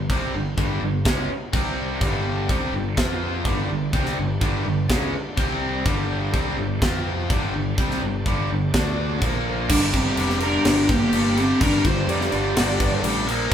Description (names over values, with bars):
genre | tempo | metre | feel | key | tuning
hard rock | 125 BPM | 4/4 | straight | G minor | A4 = 440 Hz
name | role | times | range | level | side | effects
distorted electric guitar | riff | 0.0-13.5 s | G2 to F4 | -28 LUFS | left 6 dB | overdrive
tight distorted guitar | riff | 0.0-13.5 s | G2 to F4 | -27 LUFS | right 5 dB | distortion
modern bright picked electric bass | bass | 0.0-13.5 s | F1 to F2 | -27 LUFS | equal | none
tight metal drum kit | drums | 0.1-13.5 s | crash cymbal, kick drum, snare drum | -24 LUFS | equal | none
bright tonewheel organ | sustained chords | 2.0-13.5 s | F3 to Bb5 | -37 LUFS | equal | none
hollow clarinet-like synth lead | melody | 9.7-13.5 s | Bb3 to G4 | -22 LUFS | equal | chorus
high-gain lead guitar | second line | 9.7-13.5 s | G4 to D5 | -29 LUFS | right 3 dB | distortion
room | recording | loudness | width
moderate large studio reverb, RT60 1.3 s | band playing live in one room | -20 LUFS | side -9 dB against mid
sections
0.0-9.7 A section; 9.7-13.5 B section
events
none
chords
0.0 G5; 1.5 C5; 2.0 G5; 3.0 F5; 3.5 G5; 5.4 C5; 5.9 G5; 6.8 F5; 7.3 G5; 8.7 D5; 9.2 Bb5; 9.7 Gm